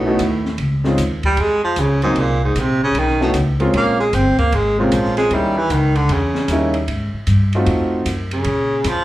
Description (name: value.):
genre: jazz, small-group swing and bop.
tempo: 153 BPM.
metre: 4/4.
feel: swing 65% on 8ths.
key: unclear.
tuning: A4 = 441 Hz.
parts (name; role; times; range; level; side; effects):
warm baritone saxophone; second line; 0.0-9.0 s; Ab2 to C4; -18 LUFS; right 1 dB; plate reverb, slapback echo.
warm concert grand piano; accompaniment; 0.0-8.0 s; Gb3 to Ab4; -19 LUFS; equal; plate reverb.
upright bass; bass; 0.0-9.0 s; G1 to Bb2; -20 LUFS; equal; none.
open jazz drum kit; drums; 0.2-9.0 s; hi-hat, kick drum, ride cymbal, snare drum; -27 LUFS; equal; none.
room: moderate club reverb, RT60 0.7 s.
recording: live gig heard through the venue's PA, club reverb.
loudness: -15 LUFS.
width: side -15 dB against mid.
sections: 0.0-9.0 A section.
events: baritone saxophone solo 0.0-9.0.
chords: 0.0 B9; 0.6 Dbmaj7; 2.2 Bb7sus2; 3.0 B9; 3.7 Bbm9; 5.3 Eb7b9; 6.9 Abmaj7; 7.7 F7b9; 8.5 Bbm.